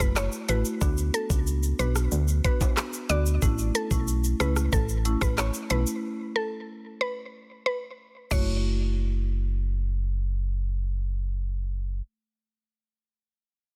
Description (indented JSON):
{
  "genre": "dancehall",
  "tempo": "92 BPM",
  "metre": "4/4",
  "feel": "straight",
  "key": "F# minor",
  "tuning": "A4 = 440 Hz",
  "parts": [
    { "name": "mallet-like synth pluck", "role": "melody", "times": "0.0-10.6 s", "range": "A4 to D5", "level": "-34 LUFS", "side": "equal", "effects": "chorus, tape echo" },
    { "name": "marimba with medium mallets", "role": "accompaniment", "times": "0.0-12.7 s", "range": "A3 to F#4", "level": "-36 LUFS", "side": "equal", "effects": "none" },
    { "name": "solid FM bass", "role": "bass", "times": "0.0-12.0 s", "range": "F#1 to D2", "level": "-28 LUFS", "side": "equal", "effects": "none" },
    { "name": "island pop drum kit", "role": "drums", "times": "0.0-8.5 s", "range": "crash cymbal, handclaps, hi-hat, kick drum, rim click, shaker", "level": "-30 LUFS", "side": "equal", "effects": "soft clipping on snare" },
    { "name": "egg shaker and timbales", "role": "percussion", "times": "0.0-8.9 s", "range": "none", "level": "-41 LUFS", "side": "equal", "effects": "none" }
  ],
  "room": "little or no reverb",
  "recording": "dense, heavily limited modern master",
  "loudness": "-27 LUFS",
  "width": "mono",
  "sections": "0.0-8.6 A section; 8.6-11.2 B section",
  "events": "break 6.0-8.6",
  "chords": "0.0 F#m7; 0.8 D6; 3.4 A; 6.0 N.C.; 8.3 F#m7"
}